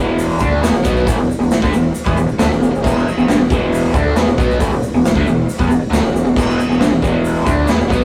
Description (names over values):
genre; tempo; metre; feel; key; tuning
garage rock duo or trio; 136 BPM; 4/4; straight; unclear; A4 = 440 Hz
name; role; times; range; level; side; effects
raw garage guitar; riff; 0.0-8.0 s; E2 to D4; -18 LUFS; equal; overdrive, phaser
gritty driven synth bass; bass; 0.0-8.0 s; E1 to E2; -23 LUFS; equal; distortion, tube saturation
raw garage drum kit; drums; 0.2-8.0 s; crash cymbal, hi-hat, kick drum, snare drum; -20 LUFS; equal; none
egg shaker; percussion; 0.2-8.0 s; none; -39 LUFS; equal; none
room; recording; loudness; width
moderate studio reverb, RT60 0.5 s; rough rehearsal-room recording; -15 LUFS; mono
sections
0.0-8.0 A section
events
none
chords
0.0 E5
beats
0.19 0.63 | 1.07 1.51 1.95 2.39 | 2.83 3.27 3.71 4.15 | 4.59 5.04 5.48 5.92 | 6.36 6.80 7.24 7.68